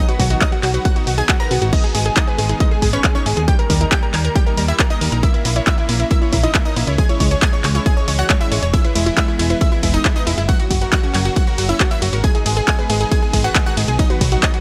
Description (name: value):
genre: uplifting trance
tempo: 137 BPM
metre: 4/4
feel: straight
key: G# minor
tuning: A4 = 445 Hz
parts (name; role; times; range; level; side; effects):
- unison pluck; melody; 0.0-14.6 s; C#4 to A#5; -26 LUFS; equal; sidechain pumping, dub echo
- plucky unison lead; second line; 0.0-14.6 s; E5 to A#6; -30 LUFS; equal; sidechain pumping, dub echo
- supersaw pad; sustained chords; 0.0-14.6 s; C#3 to C#4; -31 LUFS; equal; none
- unison pluck; arpeggios; 0.0-14.6 s; F#3 to C#5; -29 LUFS; equal; sidechain pumping, dub echo
- solid FM bass; bass; 0.0-14.4 s; E1 to D#2; -22 LUFS; equal; sidechain pumping
- punchy analog drum machine; drums; 0.1-14.6 s; crash cymbal, handclaps, hi-hat, ride cymbal; -24 LUFS; equal; none
- electronic kick drum; drums; 0.2-14.5 s; none; -19 LUFS; equal; overdrive
room: little or no reverb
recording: none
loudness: -17 LUFS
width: mono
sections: 0.0-14.6 A section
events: none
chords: 0.0 B; 1.7 G#m; 3.5 D#; 5.2 A#dim; 7.0 C#m; 8.7 E; 10.5 F#; 12.2 G#m; 14.0 B